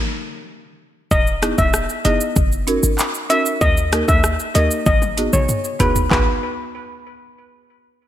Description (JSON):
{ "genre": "dancehall", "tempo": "96 BPM", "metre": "4/4", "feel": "straight", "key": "G# minor", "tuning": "A4 = 435 Hz", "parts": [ { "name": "steel pan", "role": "melody", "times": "1.1-6.4 s", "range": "B4 to E5", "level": "-20 LUFS", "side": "left 1 dB", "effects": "ping-pong delay" }, { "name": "short 808-style bass", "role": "bass", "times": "1.1-6.4 s", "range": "E1 to D#2", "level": "-20 LUFS", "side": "equal", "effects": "none" }, { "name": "pop drum kit", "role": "drums", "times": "1.1-6.3 s", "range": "handclaps, hi-hat, kick drum, rim click, shaker, toms", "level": "-20 LUFS", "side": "equal", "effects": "none" }, { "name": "folk marimba with medium mallets", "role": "accompaniment", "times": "1.4-6.4 s", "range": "A#3 to A#4", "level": "-24 LUFS", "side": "right 1 dB", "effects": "none" } ], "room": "light reverb, digital ambience", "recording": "bright 1980s-style digital production", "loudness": "-15 LUFS", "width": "side -12 dB against mid", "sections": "0.0-1.1 A section; 1.1-6.1 B section; 6.1-8.1 C section", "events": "stop 0.0-1.1; drum fill 4.9-6.1", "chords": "0.0 N.C.; 1.1 Emaj7; 2.4 F#6; 3.6 D#; 4.9 G#m7" }